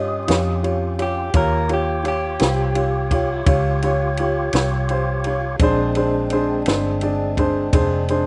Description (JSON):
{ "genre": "slow blues", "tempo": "56 BPM (dotted quarters)", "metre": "12/8", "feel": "straight", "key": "unclear", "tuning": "A4 = 440 Hz", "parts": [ { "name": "electric guitar through a small old amp", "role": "second line", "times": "0.0-3.4 s", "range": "G4 to Eb5", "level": "-27 LUFS", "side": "equal", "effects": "slapback echo" }, { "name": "dark grand piano", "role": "accompaniment", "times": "0.0-8.3 s", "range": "D4 to D5", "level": "-24 LUFS", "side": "equal", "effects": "none" }, { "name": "tonewheel organ", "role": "sustained chords", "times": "0.0-8.3 s", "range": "Ab3 to Db5", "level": "-28 LUFS", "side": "equal", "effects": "slow rotary speaker" }, { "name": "vintage muted fingered electric bass", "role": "bass", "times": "0.0-8.3 s", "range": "F1 to G2", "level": "-25 LUFS", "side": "equal", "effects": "none" }, { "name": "compact cocktail drum kit", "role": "drums", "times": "0.3-8.3 s", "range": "kick drum, ride cymbal, snare drum", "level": "-25 LUFS", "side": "equal", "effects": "none" } ], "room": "little or no reverb", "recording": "recorded outdoors, with no room sound, nothing above 10.7 kHz", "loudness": "-20 LUFS", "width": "mono", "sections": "0.0-8.3 A section", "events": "clean electric guitar solo 0.0-8.3", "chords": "0.0 Eb9; 5.6 Bb9" }